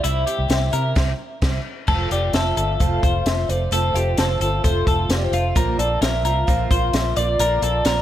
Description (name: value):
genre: jangly indie pop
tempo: 130 BPM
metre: 4/4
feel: straight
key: F major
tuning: A4 = 440 Hz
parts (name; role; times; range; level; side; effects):
- warbly nostalgic lead; melody; 0.0-8.0 s; A4 to F5; -25 LUFS; left 1 dB; chorus
- picked twelve-string acoustic guitar; accompaniment; 0.0-8.0 s; Bb2 to F4; -28 LUFS; right 6 dB; none
- twelve-string electric guitar; arpeggios; 0.0-8.0 s; E4 to D5; -25 LUFS; left 3 dB; none
- vintage muted fingered electric bass; bass; 0.0-8.0 s; F1 to C3; -22 LUFS; equal; none
- compact cocktail drum kit; drums; 0.0-8.0 s; crash cymbal, hi-hat, kick drum, snare drum; -22 LUFS; equal; none
room: light reverb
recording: none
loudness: -18 LUFS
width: side -12 dB against mid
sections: 0.0-1.9 A section; 1.9-8.0 B section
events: band accent 1.0-1.9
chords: 0.0 C; 1.9 F; 5.6 Bbadd9